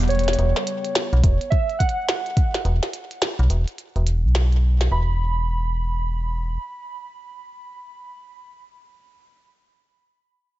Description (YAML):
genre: IDM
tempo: 106 BPM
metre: 4/4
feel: swing 62% on 16ths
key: E dorian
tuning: A4 = 439 Hz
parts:
  - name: metallic FM bass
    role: bass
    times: 0.0-6.6 s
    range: E1 to B1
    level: -19 LUFS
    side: equal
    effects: tube saturation
  - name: glitchy drum kit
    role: drums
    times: 0.0-4.9 s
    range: cabasa, hi-hat, snare drum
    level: -26 LUFS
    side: equal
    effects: overdrive
  - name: warbly lo-fi synth keys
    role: melody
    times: 0.1-8.6 s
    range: C#5 to B5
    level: -28 LUFS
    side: right 3 dB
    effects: chorus, digital delay
  - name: electronic kick drum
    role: drums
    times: 1.2-2.5 s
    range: none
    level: -19 LUFS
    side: equal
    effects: overdrive
room: little or no reverb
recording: nothing above 7.9 kHz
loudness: -19 LUFS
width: side -16 dB against mid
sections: 0.4-4.9 A section; 4.9-7.2 B section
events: drum fill 0.1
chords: 0.4 E5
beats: | 0.39 0.95 1.52 2.08 | 2.65 3.22 3.78 4.35 | 4.92 5.48 6.05 6.61